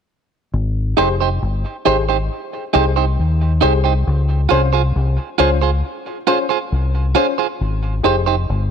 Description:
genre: reggae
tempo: 68 BPM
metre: 4/4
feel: straight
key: Ab major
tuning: A4 = 445 Hz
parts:
  - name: deep dub fingered electric bass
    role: bass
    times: 0.5-8.7 s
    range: F1 to Eb2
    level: -17 LUFS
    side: left 1 dB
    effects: none
  - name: clean electric guitar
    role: accompaniment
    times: 1.0-8.3 s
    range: Eb4 to C5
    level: -19 LUFS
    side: right 12 dB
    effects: dub echo
  - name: dark upright piano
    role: stabs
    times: 1.0-8.2 s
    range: Db4 to C5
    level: -22 LUFS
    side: left 12 dB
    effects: none
room: light reverb, small room ambience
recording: 1960s-style stereo with parts hard left and right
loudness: -15 LUFS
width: side -7 dB against mid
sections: 0.5-8.7 A section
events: none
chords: 0.5 Abmaj7; 4.1 Dbmaj7; 7.6 Abmaj7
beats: | 0.53 1.41 2.30 3.18 | 4.07 4.95 5.83 6.72 | 7.60 8.49

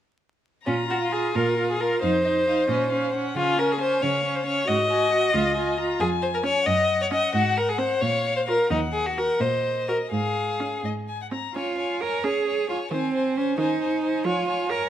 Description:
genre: quick classical-period movement for string quartet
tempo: 89 BPM (dotted quarters)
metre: 6/8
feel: rubato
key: Bb minor, Db major from 6.0 s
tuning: A4 = 445 Hz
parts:
  - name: rich violin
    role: melody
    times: 0.7-14.9 s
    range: Eb5 to Bb5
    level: -33 LUFS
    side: left 7 dB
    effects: none
  - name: rich violin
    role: second line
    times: 0.7-14.9 s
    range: Db4 to Eb5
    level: -24 LUFS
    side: left 2 dB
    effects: none
  - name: clear viola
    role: accompaniment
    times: 0.7-14.8 s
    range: Eb3 to Gb4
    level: -29 LUFS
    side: right 3 dB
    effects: none
  - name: clear cello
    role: bass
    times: 0.7-14.9 s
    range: Db2 to Bb4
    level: -28 LUFS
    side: right 3 dB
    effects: none
room: moderate recital hall reverb, RT60 1.5 s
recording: vinyl crackle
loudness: -21 LUFS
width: side -11 dB against mid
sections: 0.7-11.6 A section; 11.6-14.9 B section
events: none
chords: 0.7 Bb5; 2.0 F5; 2.7 Bbm; 3.4 Db; 4.7 Ab5; 5.3 Db; 6.0 Db/F; 6.7 Ebm7/Gb; 7.3 Ab7; 8.0 Bbm; 8.7 Ebm; 10.1 Db/Ab; 10.8 Ab; 11.6 Db; 12.9 Ab/Eb; 14.3 Db/F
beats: | 0.67 1.35 | 2.02 2.69 | 3.36 4.02 | 4.68 5.34 | 6.00 6.66 | 7.34 8.02 | 8.70 9.41 | 10.12 10.84 | 11.55 12.24 | 12.92 13.59 | 14.26

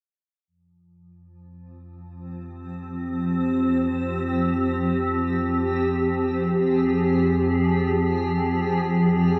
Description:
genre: dark ambient drone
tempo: free time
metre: none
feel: none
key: F minor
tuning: A4 = 440 Hz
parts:
  - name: granular cloud pad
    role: sustained chords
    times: 2.3-9.4 s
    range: F3 to Ab4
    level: -24 LUFS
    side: equal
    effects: built-in reverb
  - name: analog drone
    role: drone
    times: 1.4-9.4 s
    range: F2 to F3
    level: -33 LUFS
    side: equal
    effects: chorus
room: wet cathedral reverb, RT60 5.5 s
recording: none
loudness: -23 LUFS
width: mono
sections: 0.5-9.4 A section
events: fade-in on synth drone 0.5-9.4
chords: 0.5 Fm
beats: free time

